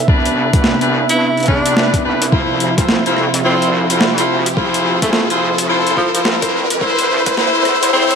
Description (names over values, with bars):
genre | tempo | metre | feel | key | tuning
glitch hop | 107 BPM | 4/4 | swing 62% on 16ths | D dorian | A4 = 439 Hz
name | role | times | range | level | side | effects
warm analog pad | sustained chords | 0.0-8.2 s | C3 to E5 | -21 LUFS | right 2 dB | chorus, sidechain pumping
wobble bass | bass | 0.0-8.2 s | G1 to G2 | -24 LUFS | equal | chorus, high-pass filter
riser | sound effects | 0.0-8.2 s | none | -21 LUFS | equal | none
clear horn section | stabs | 0.1-8.2 s | D4 to C5 | -17 LUFS | left 2 dB | sidechain pumping, low-pass filter, digital delay
electronic kick drum | drums | 0.1-7.4 s | none | -17 LUFS | equal | overdrive
boom bap sampler-style drum kit | drums | 0.3-8.2 s | hi-hat, rim click, snare drum | -18 LUFS | equal | overdrive
bright tenor saxophone | melody | 1.1-8.2 s | F3 to E4 | -20 LUFS | equal | vintage 12-bit sampler grit, digital delay
room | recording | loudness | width
moderate plate reverb, RT60 2.9 s | high-pass filter | -12 LUFS | side -6 dB against mid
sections
0.0-8.2 A section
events
build-up 0.0-8.2; riser 0.0-8.2; filter sweep 0.0-8.2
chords
0.0 Cmaj7; 2.3 Dm9; 6.8 C